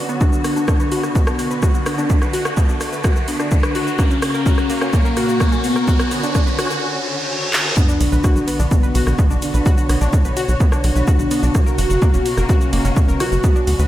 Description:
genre	melodic techno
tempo	127 BPM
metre	4/4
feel	straight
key	B minor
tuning	A4 = 439 Hz
part	soft octave-layered synth lead	melody	0.0-13.8 s	A#3 to B4	-22 LUFS	left 1 dB	chorus, phaser, sidechain pumping, tape echo
part	muted studio string section	sustained chords	0.0-13.9 s	C#3 to C#5	-26 LUFS	left 1 dB	sidechain pumping
part	riser, reverse cymbal and sub drop	sound effects	0.0-9.7 s	none	-27 LUFS	right 1 dB	none
part	analog pluck	arpeggios	0.1-13.9 s	A#3 to B4	-25 LUFS	left 1 dB	chorus, sidechain pumping, tape echo
part	techno drum kit	drums	0.1-13.9 s	handclaps, hi-hat, ride cymbal, rim click, shaker	-26 LUFS	equal	high-pass filter on perc, studio reverb, high-pass filter on hats, high-pass filter on snare, high-pass filter on cymbals
part	electronic kick drum	drums	0.2-13.5 s	none	-16 LUFS	equal	studio reverb
part	analog drone	drone	9.4-13.9 s	B2	-31 LUFS	right 1 dB	none
part	tight sequencer bass	bass	8.0-13.9 s	F#1 to D2	-18 LUFS	equal	sidechain pumping
room	moderate lush hall reverb, RT60 1.6 s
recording	dreamy mix soaked in reverb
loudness	-15 LUFS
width	side -13 dB against mid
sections	0.0-7.8 A section; 7.8-13.9 B section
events	build-up 0.0-7.8; riser 0.0-7.8; filter sweep on synth arpeggio sound 0.0-7.8; filter sweep on soft synth lead 0.0-7.8; reverse cymbal 6.8-7.8; drum fill 7.5; drop 7.8-13.9; impact 7.8-9.7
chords	0.2 Bm; 4.0 F#; 5.9 Dmaj7; 7.8 Bm; 11.5 F#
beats	| 0.21 0.68 1.15 1.63 | 2.10 2.57 3.04 3.52 | 3.99 4.46 4.93 5.41 | 5.88 6.35 6.82 7.30 | 7.77 8.24 8.71 9.19 | 9.66 10.13 10.60 11.07 | 11.55 12.02 12.49 12.96 | 13.44

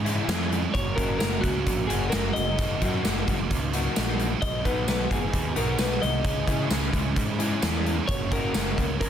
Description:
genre	indie rock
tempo	131 BPM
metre	4/4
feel	straight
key	B major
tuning	A4 = 440 Hz
part	biting overdriven guitar	riff	0.0-9.1 s	D#3 to G#4	-31 LUFS	right 8 dB	ensemble chorus, slapback echo
part	raw garage guitar	riff	0.0-8.8 s	E3 to F#4	-31 LUFS	left 8 dB	overdrive
part	fuzz picked electric bass	bass	0.0-9.1 s	F#1 to C#3	-29 LUFS	equal	overdrive
part	big rock drum kit	drums	0.1-9.1 s	hi-hat, kick drum, snare drum, tambourine	-28 LUFS	equal	none
part	clean electric guitar	melody	0.7-9.1 s	F#4 to D#5	-30 LUFS	left 1 dB	spring reverb, slapback echo
room	light reverb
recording	dense, heavily limited modern master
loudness	-23 LUFS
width	side -9 dB against mid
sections	0.0-9.1 A section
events	none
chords	0.0 C#m; 0.7 F#; 2.6 D#m7/F#; 4.4 B; 6.2 C#madd9; 8.1 F#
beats	0.28 | 0.74 1.20 1.66 2.12 | 2.58 3.04 3.50 3.95 | 4.41 4.87 5.33 5.79 | 6.25 6.71 7.17 7.62 | 8.08 8.54 9.00

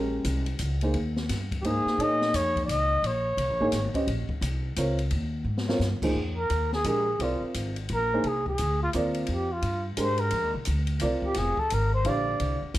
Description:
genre	modal jazz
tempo	173 BPM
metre	3/4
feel	swing 63% on 8ths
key	F dorian from 6.2 s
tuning	A4 = 436 Hz
part	dark upright piano	accompaniment	0.0-12.6 s	D3 to F5	-29 LUFS	right 1 dB	none
part	upright bass	bass	0.0-12.8 s	F1 to Bb2	-29 LUFS	equal	none
part	open jazz drum kit	drums	0.2-12.8 s	crash cymbal, hi-hat, kick drum, ride cymbal, snare drum	-36 LUFS	left 2 dB	none
part	breathy trumpet	melody	1.6-4.0, 6.4-12.6 s	F4 to Eb5	-27 LUFS	equal	none
room	light reverb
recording	none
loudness	-24 LUFS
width	side -15 dB against mid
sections	0.0-6.2 A section; 6.2-12.8 B section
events	drum fill 5.5-5.8; trumpet solo 6.2-12.8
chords	0.0 Ab/Bb; 2.0 Bbm7; 4.1 Ab/Bb; 6.2 Fm11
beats	0.25 0.60 | 0.95 1.29 1.64 | 1.99 2.34 2.68 | 3.03 3.38 3.72 | 4.07 4.42 4.76 | 5.11 5.46 5.81 | 6.16 6.50 6.85 | 7.20 7.54 7.89 | 8.24 8.59 8.94 | 9.28 9.63 9.98 | 10.32 10.67 11.02 | 11.36 11.71 12.06 | 12.40 12.75

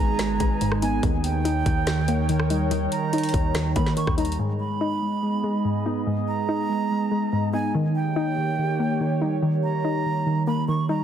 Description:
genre	hip hop, trap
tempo	143 BPM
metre	4/4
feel	half-time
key	G# harmonic minor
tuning	A4 = 439 Hz
part	jazz flute	second line	0.0-11.0 s	G5 to C#6	-30 LUFS	right 5 dB	tape echo
part	soft round pluck	accompaniment	0.0-11.0 s	G#2 to D#4	-27 LUFS	left 4 dB	chorus, low-pass filter
part	warbly tape-like pad	sustained chords	0.0-11.0 s	A#3 to G#5	-31 LUFS	left 1 dB	chorus, built-in reverb, phaser
part	muted felt-like synth keys	arpeggios	0.0-11.0 s	D#3 to B3	-26 LUFS	right 3 dB	chorus, low-pass filter, tape echo
part	hard-hitting 808-style bass	bass	0.0-4.4 s	G1 to D#3	-28 LUFS	left 1 dB	none
part	trap drum kit	drums	0.2-4.4 s	hi-hat, kick drum, rim click, snare drum	-26 LUFS	left 1 dB	none
room	light reverb, digital ambience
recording	dense, heavily limited modern master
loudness	-21 LUFS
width	side -9 dB against mid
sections	0.0-4.4 A section; 4.4-11.0 B section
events	none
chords	0.0 G#m; 1.0 D#7; 4.4 G#m; 7.7 D#7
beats	0.19 0.61 | 1.03 1.45 1.87 2.29 | 2.71 3.13 3.55 3.97 | 4.39 4.81 5.23 5.65 | 6.07 6.49 6.91 7.33 | 7.75 8.16 8.58 9.00 | 9.42 9.84 10.26 10.68

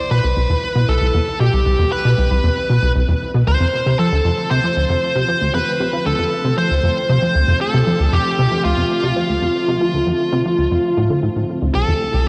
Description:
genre	ambient, sequencer-driven space music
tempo	116 BPM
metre	4/4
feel	straight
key	D dorian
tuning	A4 = 439 Hz
part	bluesy overdriven lead guitar	melody	0.0-12.3 s	F4 to C5	-21 LUFS	equal	distortion, shimmer reverb, delay
part	evolving wavetable pad	sustained chords	0.0-12.3 s	B2 to F4	-29 LUFS	equal	ensemble chorus, built-in reverb
part	plucky analog bass	riff	0.1-12.3 s	C2 to F3	-20 LUFS	equal	lush chorus, delay
room	wet plate reverb, RT60 2.7 s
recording	dreamy mix soaked in reverb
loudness	-17 LUFS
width	mono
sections	0.0-12.3 A section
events	fade-in on ambient pad 0.0-12.3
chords	0.0 Cmaj7; 3.5 Dm7; 11.7 Cmaj7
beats	0.37 0.89 | 1.40 1.92 2.44 2.96 | 3.47 3.99 4.51 5.02 | 5.54 6.06 6.58 7.09 | 7.61 8.13 8.64 9.16 | 9.68 10.20 10.71 11.23 | 11.75 12.27

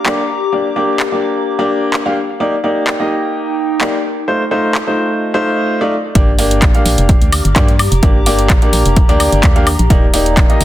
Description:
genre	piano house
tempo	128 BPM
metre	4/4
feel	swing 53% on 16ths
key	G minor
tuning	A4 = 440 Hz
part	clear upright piano	riff	0.0-10.6 s	A3 to F5	-16 LUFS	equal	sidechain pumping, tape echo
part	warbly tape-like pad	texture	0.0-10.6 s	Eb4 to D6	-21 LUFS	left 2 dB	chorus, built-in reverb, phaser, sidechain pumping
part	garage drum kit	drums	0.1-10.6 s	handclaps, hi-hat, woodblock	-18 LUFS	equal	none
part	organ-like FM bass	bass	6.2-10.6 s	F1 to G2	-15 LUFS	equal	sidechain pumping
part	electronic kick drum	drums	6.2-10.5 s	none	-11 LUFS	equal	none
room	moderate digital room reverb, RT60 1.1 s, digital ambience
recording	dense, heavily limited modern master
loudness	-11 LUFS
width	side -14 dB against mid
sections	0.0-6.2 A section; 6.2-10.6 B section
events	drop 6.2-10.6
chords	0.0 Gm; 2.2 Ebmaj7; 4.3 F7; 6.2 Gm; 9.7 Ebmaj7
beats	0.06 | 0.53 1.00 1.46 1.93 | 2.40 2.87 3.34 3.81 | 4.28 4.75 5.21 5.68 | 6.15 6.62 7.09 7.56 | 8.03 8.50 8.96 9.43 | 9.90 10.37

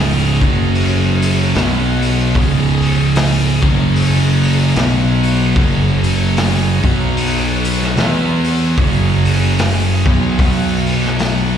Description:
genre	stoner and doom metal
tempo	75 BPM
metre	4/4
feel	swing 59% on 8ths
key	unclear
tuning	A4 = 441 Hz
part	bright tonewheel organ	sustained chords	0.0-11.6 s	E3 to D#5	-26 LUFS	equal	overdrive, slow rotary speaker
part	thick fuzz guitar	riff	0.0-11.6 s	C#2 to E4	-19 LUFS	left 9 dB	distortion
part	thick fuzz guitar	riff	0.0-11.6 s	C#2 to E4	-17 LUFS	right 9 dB	distortion
part	overdriven picked electric bass	bass	0.0-11.6 s	C#1 to E2	-18 LUFS	left 1 dB	none
part	raw garage drum kit	drums	0.4-11.4 s	hi-hat, kick drum, snare drum	-18 LUFS	left 1 dB	none
room	small room ambience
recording	live gig heard through the venue's PA, recital hall reverb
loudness	-12 LUFS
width	side -8 dB against mid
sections	0.0-11.6 A section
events	none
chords	0.3 F#5; 1.6 B5; 2.4 C#5; 3.6 F#5; 4.8 B5; 5.6 F#5; 6.8 B5; 8.0 E5; 8.8 F#5; 10.4 B5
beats	0.75 1.55 | 2.35 3.16 3.96 4.76 | 5.57 6.37 7.17 7.98 | 8.78 9.59 10.39 11.20

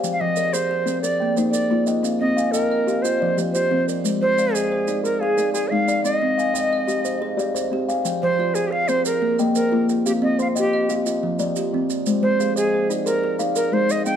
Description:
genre	southern african traditional, mbira-style interlocking cycle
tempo	120 BPM (dotted quarters)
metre	12/8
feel	straight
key	F dorian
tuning	A4 = 438 Hz
part	kalimba	arpeggios	0.0-14.2 s	F3 to G5	-23 LUFS	left 5 dB	none
part	kalimba	arpeggios	0.0-14.2 s	F3 to C6	-25 LUFS	right 5 dB	none
part	maracas	percussion	0.0-14.2 s	none	-33 LUFS	right 9 dB	none
part	bright Native American-style cedar flute	melody	0.1-14.2 s	G4 to G5	-22 LUFS	right 1 dB	none
room	moderate recital hall reverb, RT60 1.4 s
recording	dark, warm production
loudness	-18 LUFS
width	side -9 dB against mid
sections	0.0-8.1 A section; 8.1-14.2 B section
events	none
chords	0.0 Fm; 1.0 Bb; 2.0 Cm; 3.0 F5; 4.0 Ab; 6.0 Cm; 8.1 Fm; 9.1 Bb5; 10.1 Cm; 11.1 F5; 12.1 Ab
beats	| 0.04 0.54 1.04 1.54 | 2.04 2.54 3.04 3.54 | 4.04 4.54 5.05 5.55 | 6.05 6.55 7.05 7.55 | 8.05 8.55 9.05 9.55 | 10.05 10.55 11.05 11.56 | 12.06 12.56 13.06 13.56 | 14.06

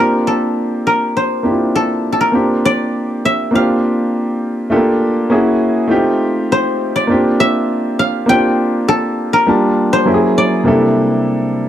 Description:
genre	soul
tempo	101 BPM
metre	4/4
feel	straight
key	unclear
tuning	A4 = 440 Hz
part	koto	melody	0.0-11.7 s	A4 to G5	-16 LUFS	left 1 dB	none
part	clear baby grand piano	accompaniment	0.0-11.7 s	C3 to A5	-14 LUFS	equal	none
room	studio ambience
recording	dry, close 1970s-style studio recording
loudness	-12 LUFS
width	side -11 dB against mid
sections	0.0-2.3 A section; 2.3-11.7 B section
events	none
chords	0.0 C9sus4; 2.3 Bb69; 4.7 Gm9; 5.3 F#9; 5.9 F7; 7.1 Bb69; 9.5 Gm9; 10.1 F#9; 10.7 C13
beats	0.55 1.15 1.74 | 2.34 2.93 3.53 4.12 | 4.72 5.31 5.91 6.50 | 7.10 7.69 8.29 8.88 | 9.47 10.07 10.66 11.26

